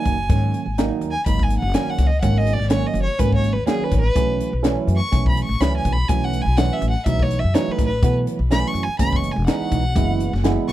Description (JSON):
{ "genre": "electric jazz fusion", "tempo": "124 BPM", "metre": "4/4", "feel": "swing 55% on 16ths", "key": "G# phrygian", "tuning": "A4 = 439 Hz", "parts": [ { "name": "rich violin", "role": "melody", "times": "0.0-10.7 s", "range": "G#4 to C#6", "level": "-25 LUFS", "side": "left 1 dB", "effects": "tape echo" }, { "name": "barky tine electric piano", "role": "accompaniment", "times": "0.0-10.7 s", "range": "D#3 to E4", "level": "-24 LUFS", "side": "right 6 dB", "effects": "phaser" }, { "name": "upright bass", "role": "bass", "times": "0.1-10.7 s", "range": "E1 to B2", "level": "-21 LUFS", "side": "left 1 dB", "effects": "none" }, { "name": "crisp fusion drum kit", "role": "drums", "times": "0.1-10.7 s", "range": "hi-hat, kick drum, snare drum", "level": "-22 LUFS", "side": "left 1 dB", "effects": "none" } ], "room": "little or no reverb", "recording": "none", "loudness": "-17 LUFS", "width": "side -14 dB against mid", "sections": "0.0-10.7 A section", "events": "violin solo 0.0-10.7", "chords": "0.0 G#9sus4; 4.2 B9sus4; 9.0 F#9sus4" }